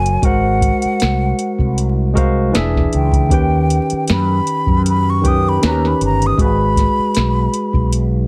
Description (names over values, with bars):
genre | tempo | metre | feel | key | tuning
R&B, neo-soul | 78 BPM | 4/4 | swing 54% on 16ths | unclear | A4 = 439 Hz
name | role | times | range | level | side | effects
breathy hollow jazz flute | melody | 0.0-7.9 s | F#5 to D#6 | -22 LUFS | equal | slapback echo
barky tine electric piano | accompaniment | 0.0-8.3 s | D#3 to G#5 | -21 LUFS | equal | overdrive
mellow fretless electric bass | bass | 0.0-8.3 s | E1 to F#2 | -19 LUFS | equal | analog chorus
soft vintage rhythm box | drums | 0.1-8.1 s | hi-hat, kick drum, snare drum | -21 LUFS | equal | none
room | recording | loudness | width
little or no reverb | vinyl crackle | -16 LUFS | mono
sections
0.0-8.3 A section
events
drum fill 7.9-8.3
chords
0.2 G#13; 2.5 E7; 3.3 D#7alt; 5.6 D#7b13; 6.4 G#m7